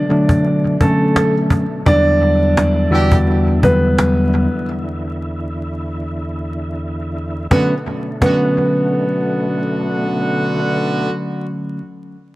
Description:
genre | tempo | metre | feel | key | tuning
hip hop, boom-bap hip-hop | 85 BPM | 4/4 | swing 55% on 16ths | B minor | A4 = 439 Hz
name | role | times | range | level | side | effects
warm upright piano | melody | 0.0-9.6 s | A3 to D5 | -18 LUFS | right 1 dB | analog delay
mellow tine electric piano | accompaniment | 0.0-11.8 s | E2 to F#4 | -16 LUFS | equal | cassette tape, analog delay
overdriven tonewheel organ | sustained chords | 0.0-11.1 s | E2 to E4 | -25 LUFS | equal | chorus vibrato, fast rotary speaker
cajon | drums | 0.1-8.4 s | none | -18 LUFS | equal | analog delay
warm horn section | stabs | 2.9-3.1, 7.5-11.1 s | D3 to G4 | -22 LUFS | right 1 dB | analog delay
room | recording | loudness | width
light reverb | echo-heavy mix, vinyl crackle | -14 LUFS | side -18 dB against mid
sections
0.0-7.5 A section; 7.5-10.3 B section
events
break 4.7-7.5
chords
0.0 Bm7; 1.9 Em7; 7.5 Bm7

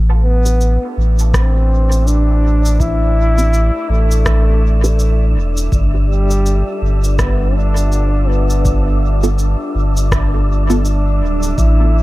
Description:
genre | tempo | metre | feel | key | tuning
ambient dub | 82 BPM | 4/4 | swing 59% on 16ths | unclear | A4 = 440 Hz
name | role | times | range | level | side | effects
warm analog pad | sustained chords | 0.0-12.0 s | A2 to D5 | -29 LUFS | left 1 dB | lush chorus
warm sub bass | bass | 0.0-12.0 s | D1 to A1 | -13 LUFS | equal | none
wind-like tuned noise texture | texture | 0.6-12.0 s | D4 to E5 | -26 LUFS | left 1 dB | built-in reverb
mellow trombone | melody | 0.2-12.0 s | G3 to E4 | -21 LUFS | equal | dub echo
filtered dub chord stab | stabs | 0.5-10.9 s | B3 to B4 | -23 LUFS | right 1 dB | phaser, dub echo
electronic cabasa and rim click | drums | 0.5-11.8 s | none | -25 LUFS | equal | dub echo
electronic kick drum | drums | 1.3-11.8 s | none | -19 LUFS | equal | none
room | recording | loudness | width
digital ambience | none | -12 LUFS | side -18 dB against mid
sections
0.0-12.0 A section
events
fade-in on analog synth pad 0.0-12.0; filter sweep on synth stab 0.0-12.0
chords
0.0 A9sus4; 5.7 G7sus2

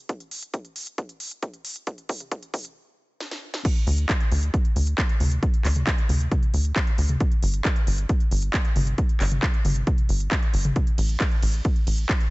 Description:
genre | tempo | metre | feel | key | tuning
uplifting trance | 135 BPM | 4/4 | straight | unclear | A4 = 440 Hz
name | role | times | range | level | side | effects
electronic kick drum | drums | 0.1-12.2 s | none | -22 LUFS | equal | overdrive, high-pass filter on kick
techno drum kit | drums | 0.1-12.3 s | crash cymbal, handclaps, hi-hat, ride cymbal, snare drum, toms | -29 LUFS | equal | overdrive, high-pass filter on hats, high-pass filter on toms, high-pass filter on snare, high-pass filter on cymbals
tight sequencer bass | bass | 3.9-12.1 s | G1 to D2 | -22 LUFS | equal | tube saturation, sidechain pumping
room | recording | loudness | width
digital ambience | nothing above 7.9 kHz | -21 LUFS | side -22 dB against mid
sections
0.0-3.6 A section; 3.6-12.3 B section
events
build-up 0.0-3.6; drum fill 0.1-2.8, 3.2-3.6; stop 2.8-3.6; drop 3.6-12.3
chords
none

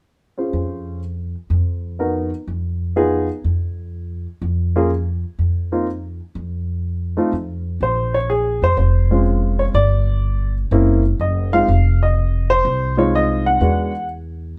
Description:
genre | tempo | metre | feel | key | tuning
jazz | 124 BPM | 4/4 | swing 68% on 8ths | unclear | A4 = 436 Hz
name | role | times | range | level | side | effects
dark baby grand piano | melody | 0.4-14.1 s | Ab3 to Gb5 | -21 LUFS | equal | none
upright bass | bass | 0.5-14.5 s | F1 to F2 | -21 LUFS | equal | none
room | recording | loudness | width
light reverb | band playing live in one room | -19 LUFS | mono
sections
0.1-7.8 A section; 7.8-14.6 B section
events
none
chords
0.1 Fm; 5.9 N.C.; 7.8 Bbm9; 9.7 G5; 10.7 Gb7#11; 11.7 Fm7; 13.6 E9

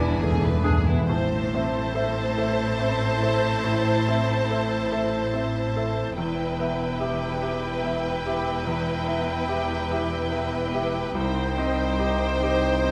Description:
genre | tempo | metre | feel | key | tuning
cinematic, emotional film score for orchestra | 48 BPM (dotted quarters) | 6/8 | rubato | A minor | A4 = 442 Hz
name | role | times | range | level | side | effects
rich studio violin section | melody | 0.0-12.9 s | G5 to A5 | -36 LUFS | equal | none
clear studio violin section | second line | 0.0-12.9 s | E4 to C5 | -31 LUFS | equal | none
bright grand piano | accompaniment | 0.0-12.9 s | C2 to E5 | -30 LUFS | equal | none
warm studio viola section | accompaniment | 0.0-12.9 s | D4 to E4 | -38 LUFS | equal | none
mellow French horn section | sustained chords | 0.0-0.7 s | none | barely audible | none | none
bright studio cello section | bass | 0.0-12.9 s | C2 to A2 | -33 LUFS | equal | none
clear studio double bass section | bass | 0.0-12.9 s | E1 to C2 | -34 LUFS | equal | none
timpani | percussion | 0.0-1.1 s | E2 | -27 LUFS | equal | none
mellow clarinet | second line | 0.6-0.8 s | D4 | -35 LUFS | equal | none
mellow cor anglais | second line | 0.6-0.8 s | G#4 | -37 LUFS | equal | none
room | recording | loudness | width
moderate scoring stage reverb, RT60 1.9 s | none | -25 LUFS | mono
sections
0.0-1.1 A section; 1.1-12.9 B section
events
timpani fill 0.0-1.1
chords
0.0 E7; 1.1 Am; 6.2 Em; 11.2 Cm

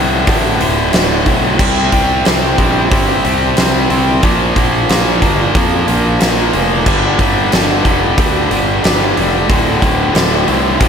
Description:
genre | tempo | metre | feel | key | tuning
classic rock | 91 BPM | 4/4 | straight | D minor | A4 = 440 Hz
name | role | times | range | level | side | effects
tight distorted guitar | riff | 0.0-10.9 s | D2 to C4 | -13 LUFS | equal | distortion, slapback echo
fuzz picked electric bass | bass | 0.0-10.9 s | D1 to F2 | -18 LUFS | equal | overdrive
huge arena drum kit | drums | 0.3-10.9 s | crash cymbal, hi-hat, kick drum, snare drum | -15 LUFS | equal | none
room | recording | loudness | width
moderate lush hall reverb, RT60 1.9 s, small room ambience | big arena sound | -10 LUFS | side -7 dB against mid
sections
0.0-10.9 A section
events
none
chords
0.0 D5; 1.6 C5; 4.2 Bb5; 6.9 G5; 9.5 D5

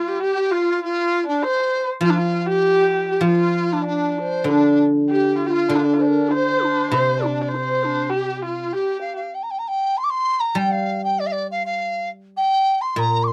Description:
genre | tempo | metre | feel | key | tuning
chinese traditional, Chinese chamber ensemble | 99 BPM | 2/4 | rubato | G yu mode | A4 = 436 Hz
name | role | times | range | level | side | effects
mellow hollow large dizi | melody | 0.0-13.3 s | D4 to D6 | -23 LUFS | equal | none
dark erhu | second line | 0.0-9.2 s | D4 to D5 | -26 LUFS | equal | none
guzheng | accompaniment | 0.0-13.3 s | Bb2 to G3 | -23 LUFS | equal | none
room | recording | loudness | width
light reverb | dark, warm production | -20 LUFS | mono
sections
0.0-9.3 A section; 9.3-13.3 B section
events
none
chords
none

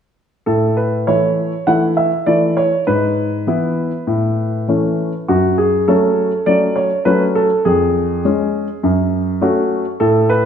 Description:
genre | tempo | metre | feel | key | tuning
classical-period piano sonatina | 101 BPM | 4/4 | rubato | A major | A4 = 440 Hz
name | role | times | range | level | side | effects
clear concert grand piano | solo | 0.5-10.5 s | E#2 to F#5 | -14 LUFS | equal | none
room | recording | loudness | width
moderate recital hall reverb, RT60 1.6 s | none | -14 LUFS | side -8 dB against mid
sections
0.5-10.5 A section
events
none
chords
0.5 A; 2.9 E/G#; 4.1 A; 5.3 F#m; 7.7 C#/E#; 8.8 F#m

